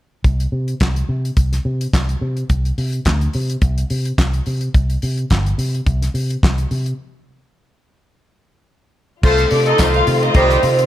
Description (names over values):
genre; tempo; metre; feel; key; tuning
disco; 107 BPM; 4/4; straight; C dorian; A4 = 437 Hz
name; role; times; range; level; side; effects
fingered electric bass with an envelope filter; bass; 0.2-10.8 s; G1 to C3; -18 LUFS; equal; none
damped 70s drum kit; drums; 0.2-10.9 s; crash cymbal, handclaps, hi-hat, kick drum, snare drum; -19 LUFS; equal; none
vibraphone with medium hard mallets; melody; 9.2-10.9 s; A4 to C5; -16 LUFS; equal; none
warm studio string section; sustained chords; 9.2-10.9 s; Eb3 to F4; -22 LUFS; left 2 dB; none
warm horn section; stabs; 9.2-10.6 s; G3 to Eb5; -20 LUFS; right 1 dB; none
warm studio violin section; second line; 9.5-10.6 s; D4 to F5; -21 LUFS; left 2 dB; none
tambourine; percussion; 9.8-9.9 s; none; -31 LUFS; left 6 dB; none
room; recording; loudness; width
light reverb; none; -15 LUFS; side -13 dB against mid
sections
0.2-9.2 A section; 9.2-10.9 B section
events
break 7.0-9.2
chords
0.2 N.C.; 4.7 C5; 9.2 F7/C